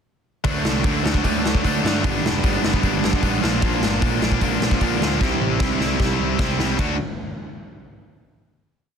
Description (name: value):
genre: punk rock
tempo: 151 BPM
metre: 4/4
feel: straight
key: unclear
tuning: A4 = 440 Hz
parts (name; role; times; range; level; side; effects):
- overdriven electric guitar; riff; 0.4-7.0 s; G2 to D4; -24 LUFS; right 15 dB; none
- tight distorted guitar; riff; 0.4-7.0 s; G2 to F#4; -24 LUFS; left 17 dB; distortion
- fuzz picked electric bass; bass; 0.4-7.0 s; E1 to G2; -26 LUFS; equal; overdrive
- raw garage drum kit; drums; 0.4-6.9 s; crash cymbal, hi-hat, kick drum, snare drum; -22 LUFS; equal; none
room: little or no reverb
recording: dense, heavily limited modern master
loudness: -18 LUFS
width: side -7 dB against mid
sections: 0.5-6.8 verse; 6.8-8.4 final chord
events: drum fill 5.2-6.8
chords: 0.5 D; 2.0 G; 3.4 Bb; 5.2 C; 6.8 D